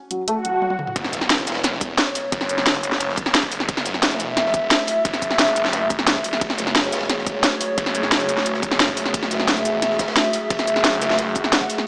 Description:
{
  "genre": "dark technical drum and bass",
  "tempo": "176 BPM",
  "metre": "4/4",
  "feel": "straight",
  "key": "F# minor",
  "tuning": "A4 = 440 Hz",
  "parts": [
    { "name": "dark analog pad", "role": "sustained chords", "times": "0.0-11.9 s", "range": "A3 to F#5", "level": "-23 LUFS", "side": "equal", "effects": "chorus, sidechain pumping" },
    { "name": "felt-muted upright piano", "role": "arpeggios", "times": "0.1-0.6 s", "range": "F#3 to A3", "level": "-24 LUFS", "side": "equal", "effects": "sidechain pumping, digital delay" },
    { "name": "drum and bass drum kit", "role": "drums", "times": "0.1-11.9 s", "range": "hi-hat, shaker, snare drum, toms", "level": "-20 LUFS", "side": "equal", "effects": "overdrive" },
    { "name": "swell and impact", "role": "sound effects", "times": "0.4-2.3, 11.4-11.9 s", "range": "none", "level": "-27 LUFS", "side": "right 1 dB", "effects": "none" },
    { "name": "snarling distorted saw bass", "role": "bass", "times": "1.0-11.5 s", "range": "E1 to F#1", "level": "-27 LUFS", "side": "equal", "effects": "distortion, sidechain pumping" },
    { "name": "crunchy breakbeat drum kit", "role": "drums", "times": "1.0-11.8 s", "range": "ride cymbal, snare drum", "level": "-28 LUFS", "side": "equal", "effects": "none" },
    { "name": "electronic kick drum", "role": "drums", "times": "1.0-11.7 s", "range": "none", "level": "-26 LUFS", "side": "equal", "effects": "none" }
  ],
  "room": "moderate lush hall reverb, RT60 2.1 s",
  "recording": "small speaker sound",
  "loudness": "-17 LUFS",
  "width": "side -28 dB against mid",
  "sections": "1.0-11.9 A section",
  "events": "swell 0.4-1.0, 11.4-11.9; drum fill 0.6-1.0; drop 1.0-11.9; impact 1.0-2.3",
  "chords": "0.0 F#madd9"
}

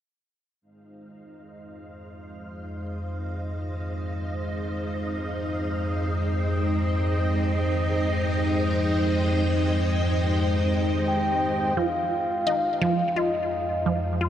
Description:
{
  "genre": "ambient, sequencer-driven space music",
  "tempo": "86 BPM",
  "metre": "4/4",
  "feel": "straight",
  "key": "F minor",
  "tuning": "A4 = 439 Hz",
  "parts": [
    { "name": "string machine, full ensemble", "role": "sustained chords", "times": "0.6-14.3 s", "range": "Ab3 to G5", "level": "-28 LUFS", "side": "equal", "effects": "ensemble chorus" },
    { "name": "analog drone", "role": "bass", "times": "2.2-14.3 s", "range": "F2", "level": "-27 LUFS", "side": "equal", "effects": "chorus" },
    { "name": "wind-like tuned noise texture", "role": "texture", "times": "1.5-14.3 s", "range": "Eb4 to Eb5", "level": "-36 LUFS", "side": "right 1 dB", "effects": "built-in reverb" },
    { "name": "soft octave-layered synth lead", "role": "melody", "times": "11.1-14.2 s", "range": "Eb5 to G5", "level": "-26 LUFS", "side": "left 1 dB", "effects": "chorus, tape echo" },
    { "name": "resonant blip pluck", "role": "riff", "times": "11.8-14.3 s", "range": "F3 to F4", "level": "-26 LUFS", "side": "right 2 dB", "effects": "phaser, tape echo" }
  ],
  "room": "wet huge ambient reverb, RT60 7.3 s",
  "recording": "none",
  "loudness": "-23 LUFS",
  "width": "side -10 dB against mid",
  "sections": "0.6-11.8 A section; 11.8-14.3 B section",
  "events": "fade-in on string machine 0.6-11.8; fade-in on synth drone 0.6-11.8; fade-in on synth texture 0.6-11.8",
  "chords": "0.6 Fm7"
}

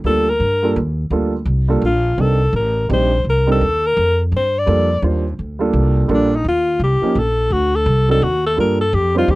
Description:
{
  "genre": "jazz, small-group swing and bop",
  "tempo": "169 BPM",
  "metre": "3/4",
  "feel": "swing 63% on 8ths",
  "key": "G minor",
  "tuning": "A4 = 440 Hz",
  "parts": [
    { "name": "upright bass", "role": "bass", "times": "0.0-9.4 s", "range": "A1 to G2", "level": "-18 LUFS", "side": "equal", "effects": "none" },
    { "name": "clear alto saxophone", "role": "melody", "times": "0.1-9.4 s", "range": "D4 to D5", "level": "-17 LUFS", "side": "left 2 dB", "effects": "none" },
    { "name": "warm grand piano", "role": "accompaniment", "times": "0.1-9.3 s", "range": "F3 to C5", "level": "-19 LUFS", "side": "right 3 dB", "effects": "none" }
  ],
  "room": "little or no reverb",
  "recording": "dry, close 1970s-style studio recording",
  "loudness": "-14 LUFS",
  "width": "side -19 dB against mid",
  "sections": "0.0-9.4 A section",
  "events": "none",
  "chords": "0.0 Gm7; 2.2 Cm7; 4.3 Gm7; 6.4 Eb; 7.5 D7b9; 8.6 Gm7"
}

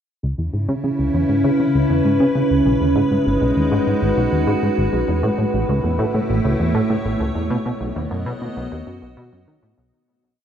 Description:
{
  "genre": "ambient, sequencer-driven space music",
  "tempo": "99 BPM",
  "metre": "4/4",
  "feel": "straight",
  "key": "C# minor",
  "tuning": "A4 = 441 Hz",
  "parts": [
    { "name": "evolving wavetable pad", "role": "sustained chords", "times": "0.6-9.9 s", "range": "A2 to D#5", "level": "-19 LUFS", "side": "equal", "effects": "chorus, built-in reverb" },
    { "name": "plucky analog bass", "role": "riff", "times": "0.2-9.9 s", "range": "G#1 to D#3", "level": "-20 LUFS", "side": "equal", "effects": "lush chorus, cassette tape, analog delay" }
  ],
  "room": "wet huge ambient reverb, RT60 7.7 s",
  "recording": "none",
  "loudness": "-17 LUFS",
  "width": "side -9 dB against mid",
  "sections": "0.2-9.9 A section",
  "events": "fade-out 6.7-9.9",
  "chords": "0.2 C#m7; 2.7 G#m7; 5.1 A; 7.5 B"
}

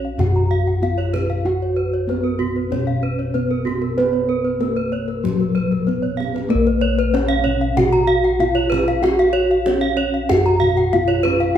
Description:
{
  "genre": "Balinese gamelan",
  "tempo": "95 BPM",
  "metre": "4/4",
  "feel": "straight",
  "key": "Bb pelog",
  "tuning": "A4 = 438 Hz",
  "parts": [
    { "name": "gamelan-type bronze metallophone", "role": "melody", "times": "0.0-11.6 s", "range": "Gb3 to Gb4", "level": "-19 LUFS", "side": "equal", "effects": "none" },
    { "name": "gamelan-type bronze metallophone", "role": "arpeggios", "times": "0.0-11.6 s", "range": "Gb4 to Bb5", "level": "-25 LUFS", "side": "left 5 dB", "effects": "none" },
    { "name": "gamelan-type bronze metallophone", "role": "arpeggios", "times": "0.0-11.4 s", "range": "Gb4 to F5", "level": "-26 LUFS", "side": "right 5 dB", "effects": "none" },
    { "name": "gamelan-type bossed gongs", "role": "bass", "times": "0.0-11.6 s", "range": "Bb1 to Cb5+35c", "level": "-22 LUFS", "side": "equal", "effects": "none" },
    { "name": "kendang", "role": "percussion", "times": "0.2-11.5 s", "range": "none", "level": "-26 LUFS", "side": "right 2 dB", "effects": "none" }
  ],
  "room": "wet large studio reverb, RT60 1.5 s",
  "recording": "band playing live in one room",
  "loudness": "-16 LUFS",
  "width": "side -10 dB against mid",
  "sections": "0.0-11.6 A section",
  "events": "drum fill 6.0-6.5",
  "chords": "none"
}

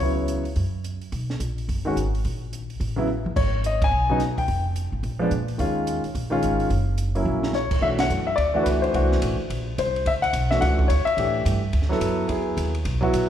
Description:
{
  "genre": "jazz piano trio",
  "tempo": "215 BPM",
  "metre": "4/4",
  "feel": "swing 62% on 8ths",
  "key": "B minor from 7.8 s",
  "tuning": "A4 = 440 Hz",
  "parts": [
    { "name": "warm upright piano", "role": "melody", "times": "0.0-13.3 s", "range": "Db3 to Ab5", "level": "-23 LUFS", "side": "left 1 dB", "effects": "none" },
    { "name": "upright bass", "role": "bass", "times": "0.0-13.3 s", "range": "F1 to Bb2", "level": "-25 LUFS", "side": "equal", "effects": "none" },
    { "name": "compact cocktail drum kit", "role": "drums", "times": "0.0-13.2 s", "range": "crash cymbal, hi-hat, kick drum, ride cymbal, snare drum, toms", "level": "-31 LUFS", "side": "right 2 dB", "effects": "none" }
  ],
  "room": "moderate scoring stage reverb, RT60 1.6 s",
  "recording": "recorded in a church or concert hall",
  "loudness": "-21 LUFS",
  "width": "side -10 dB against mid",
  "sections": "0.0-7.8 A section; 7.8-13.3 B section",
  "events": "drum fill 3.1, 7.3; band accent 3.8, 8.0",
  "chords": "0.0 Dbm7; 0.6 N.C.; 1.1 Bmaj7(no3); 2.2 N.C.; 2.8 A7(no3); 3.4 Abm; 4.5 Fm; 5.0 N.C.; 5.6 Ebsus2; 6.7 Gb7; 7.8 Bm7; 8.9 C9; 10.1 Dmaj7; 11.2 A5; 11.7 Dadd9; 12.3 Emaj7"
}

